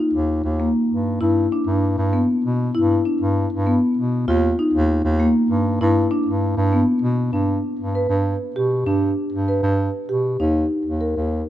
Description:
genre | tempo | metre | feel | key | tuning
contemporary instrumental, chamber music in an uneven meter | 196 BPM (eighths) | 5/8 | straight | unclear | A4 = 440 Hz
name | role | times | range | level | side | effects
marimba with medium mallets | arpeggios | 0.0-11.5 s | Bb3 to B4 | -20 LUFS | left 1 dB | none
warm bass clarinet | bass | 0.1-11.4 s | Eb2 to B2 | -22 LUFS | right 1 dB | none
room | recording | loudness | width
light reverb | close, detailed microphones | -17 LUFS | side -12 dB against mid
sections
0.0-7.3 A section; 7.3-11.5 A section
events
none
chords
0.0 Eb; 1.2 G; 4.3 Eb; 5.8 G; 10.4 Eb5

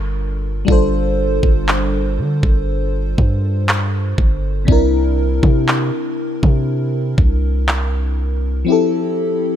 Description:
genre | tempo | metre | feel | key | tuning
contemporary R&B | 60 BPM | 4/4 | straight | G dorian | A4 = 440 Hz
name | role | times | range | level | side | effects
FM electric piano with soft pad layer | accompaniment | 0.0-9.6 s | C3 to C5 | -19 LUFS | left 2 dB | chorus
long sustained 808-style bass | bass | 0.0-8.6 s | G1 to D3 | -18 LUFS | equal | none
smooth R&B drum kit | drums | 0.7-7.9 s | handclaps, kick drum | -16 LUFS | equal | none
room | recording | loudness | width
little or no reverb | none | -14 LUFS | side -10 dB against mid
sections
0.0-9.6 A section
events
none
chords
0.0 Gm7; 4.7 C7; 8.7 Fmaj7

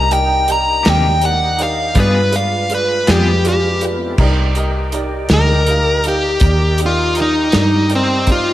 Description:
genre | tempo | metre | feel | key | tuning
slow blues | 54 BPM (dotted quarters) | 12/8 | straight | C minor | A4 = 440 Hz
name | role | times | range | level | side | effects
dark smooth lead guitar | melody | 0.0-8.5 s | C4 to Bb5 | -15 LUFS | equal | overdrive, slapback echo
warm upright piano | accompaniment | 0.0-8.5 s | Eb4 to F5 | -24 LUFS | right 3 dB | slapback echo
tonewheel organ | sustained chords | 0.0-8.5 s | Ab3 to D5 | -26 LUFS | left 2 dB | chorus vibrato, lush chorus
vintage muted fingered electric bass | bass | 0.0-8.5 s | C2 to G2 | -17 LUFS | equal | none
warm soul drum kit | drums | 0.1-8.5 s | crash cymbal, hi-hat, kick drum, snare drum | -18 LUFS | equal | none
clean electric guitar | accompaniment | 0.8-3.3 s | C3 to Ab4 | -25 LUFS | left 4 dB | tremolo, slapback echo
room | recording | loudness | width
moderate recital hall reverb, RT60 1.8 s | big arena sound | -12 LUFS | side -14 dB against mid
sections
0.0-4.2 A section; 4.2-8.5 A section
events
none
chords
0.0 Cm7; 2.0 G7b9; 4.2 Cm7

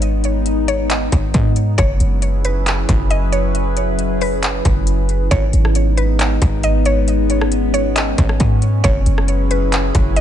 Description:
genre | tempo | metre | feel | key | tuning
hip hop, atmospheric cloud-rap | 136 BPM | 4/4 | half-time | G# minor | A4 = 441 Hz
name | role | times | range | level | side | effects
warbly tape-like pad | sustained chords | 0.0-10.2 s | F#3 to B4 | -21 LUFS | left 1 dB | chorus, built-in reverb, phaser, sidechain pumping
warm 808-style bass | bass | 0.0-10.2 s | F#1 to G#2 | -17 LUFS | equal | none
industrial drum kit | drums | 0.0-10.2 s | handclaps, hi-hat, kick drum, rim click | -18 LUFS | equal | distortion
mallet-like synth pluck | melody | 0.7-10.2 s | B4 to D#5 | -24 LUFS | equal | chorus, low-pass filter, digital delay
room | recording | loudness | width
little or no reverb | nothing above 11.0 kHz | -14 LUFS | side -10 dB against mid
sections
0.0-5.3 A section; 5.3-10.2 B section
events
none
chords
0.0 G#m; 1.8 F#7sus4; 5.3 G#m; 8.8 F#7sus4

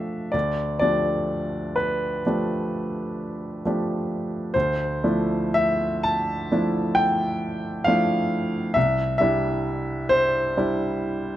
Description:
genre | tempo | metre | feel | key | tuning
classical, impressionist solo piano | 38-46 BPM (dotted quarters) | 9/8 | rubato | D dorian | A4 = 440 Hz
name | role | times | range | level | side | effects
clear baby grand piano | solo | 0.0-11.4 s | C2 to A5 | -21 LUFS | equal | none
room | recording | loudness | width
light reverb | close, detailed microphones | -21 LUFS | side -13 dB against mid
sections
0.0-11.4 A section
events
none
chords
0.3 G9/D; 4.5 Dm9; 8.8 Cadd9

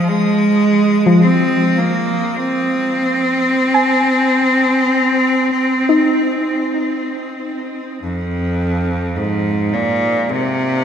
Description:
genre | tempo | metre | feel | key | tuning
ambient | 53 BPM | 4/4 | straight | unclear | A4 = 440 Hz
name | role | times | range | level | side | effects
bright cello | melody | 0.0-10.8 s | F2 to C4 | -15 LUFS | equal | shimmer reverb, tape echo
drifting glass-harmonics texture | texture | 0.0-9.2 s | Eb6 | -36 LUFS | right 2 dB | none
soft round pluck | arpeggios | 1.1-10.8 s | F3 to Ab5 | -19 LUFS | left 1 dB | chorus, shimmer reverb, tape echo
room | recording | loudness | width
wet cathedral reverb, RT60 5.4 s | in a vast, echoing space | -13 LUFS | side -8 dB against mid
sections
0.0-9.1 A section; 9.1-10.8 A section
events
fade-out on synth texture 0.0-9.1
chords
0.1 Ab; 9.1 Bb5

